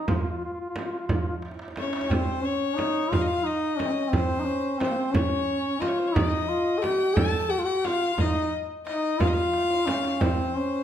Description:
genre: Persian modal ensemble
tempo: 59 BPM (dotted quarters)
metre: 6/8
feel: straight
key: F dastgah homayun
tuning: A4 = 440 Hz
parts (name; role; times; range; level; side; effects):
- dark duduk; melody; 0.0-10.8 s; Bb3 to A4; -26 LUFS; equal; none
- frame drum; percussion; 0.1-10.4 s; none; -29 LUFS; right 2 dB; none
- tombak; percussion; 0.1-10.6 s; none; -31 LUFS; right 2 dB; none
- rich violin; second line; 1.8-10.8 s; C5 to A5; -30 LUFS; left 7 dB; none
room: wet recital hall reverb, RT60 1.2 s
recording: none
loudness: -23 LUFS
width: side -10 dB against mid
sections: 0.0-2.1 A section; 2.1-10.8 B section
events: drum fill 1.4-2.1, 9.5-10.2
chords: none

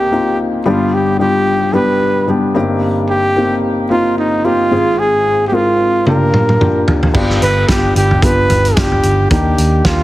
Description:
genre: piano-driven pop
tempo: 111 BPM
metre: 4/4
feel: swing 56% on 16ths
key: unclear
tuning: A4 = 440 Hz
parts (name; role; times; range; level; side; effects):
- breathy trumpet; melody; 0.0-10.0 s; Eb4 to B4; -15 LUFS; right 1 dB; none
- felt-muted upright piano; accompaniment; 0.0-10.0 s; G1 to Bb4; -15 LUFS; left 2 dB; none
- loose indie drum kit; drums; 6.1-10.0 s; crash cymbal, hi-hat, kick drum, snare drum, toms; -15 LUFS; right 1 dB; none
- vintage muted picked electric bass; bass; 7.1-10.0 s; G1 to Eb2; -15 LUFS; right 1 dB; none
room: light reverb, small room ambience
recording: heavily compressed radio sound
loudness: -11 LUFS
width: side -16 dB against mid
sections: 0.0-7.1 A section; 7.1-10.0 B section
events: drum fill 6.1-7.1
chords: 0.0 Cm7; 0.7 G; 2.6 Cm7/G; 4.7 Fm/Ab; 6.1 Gm7; 7.1 G7; 9.3 Ebmaj7

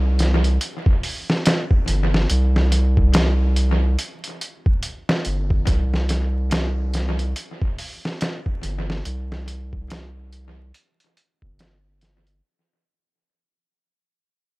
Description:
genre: trip hop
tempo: 71 BPM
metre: 4/4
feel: swing 60% on 16ths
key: unclear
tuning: A4 = 437 Hz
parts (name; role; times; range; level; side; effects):
- round analog bass; bass; 0.0-12.4 s; G1 to C2; -20 LUFS; equal; none
- trip hop sampler-style drum kit; drums; 0.2-12.4 s; hi-hat, kick drum, snare drum; -22 LUFS; equal; analog delay
room: little or no reverb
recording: echo-heavy mix, vinyl crackle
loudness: -19 LUFS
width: side -22 dB against mid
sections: 0.0-12.4 A section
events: fade-out 3.4-12.4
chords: none

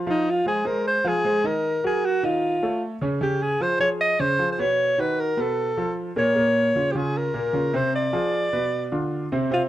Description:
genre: jazz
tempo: 152 BPM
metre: 4/4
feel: straight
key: F minor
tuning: A4 = 444 Hz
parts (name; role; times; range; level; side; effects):
- warm concert grand piano; accompaniment; 0.0-9.7 s; Bb2 to F5; -25 LUFS; right 1 dB; none
- breathy alto saxophone; melody; 0.1-9.6 s; Eb4 to Eb5; -22 LUFS; equal; none
room: moderate club reverb, RT60 0.6 s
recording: dark, warm production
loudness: -21 LUFS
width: side -13 dB against mid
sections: 0.1-9.7 A section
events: none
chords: 0.1 Fm7; 1.6 Ebmadd9; 2.4 Faug7; 3.2 Dbmaj7; 4.8 Bmaj9; 5.6 Bbmmaj7; 6.4 Bbmadd9; 7.9 Dm7b5; 8.7 Bdim

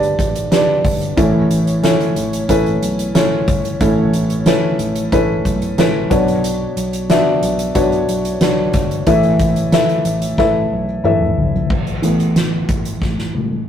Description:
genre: piano-driven pop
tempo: 91 BPM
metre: 4/4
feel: straight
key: A mixolydian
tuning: A4 = 441 Hz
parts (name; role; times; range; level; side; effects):
- felt-muted upright piano; accompaniment; 0.0-13.7 s; G2 to E5; -16 LUFS; left 1 dB; none
- vintage muted picked electric bass; bass; 0.0-13.6 s; G1 to A2; -23 LUFS; equal; none
- soft-mallet drum kit; drums; 0.0-13.7 s; crash cymbal, hi-hat, kick drum, snare drum, toms; -19 LUFS; equal; none
room: moderate studio reverb, RT60 0.6 s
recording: rough rehearsal-room recording, tube saturation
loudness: -13 LUFS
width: side -9 dB against mid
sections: 0.0-11.7 A section; 11.7-13.7 B section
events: drum fill 10.4-11.7, 13.0-13.7; felt piano solo 11.7-13.7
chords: 0.0 G; 1.2 A; 6.1 Bmadd9; 9.1 Asus2

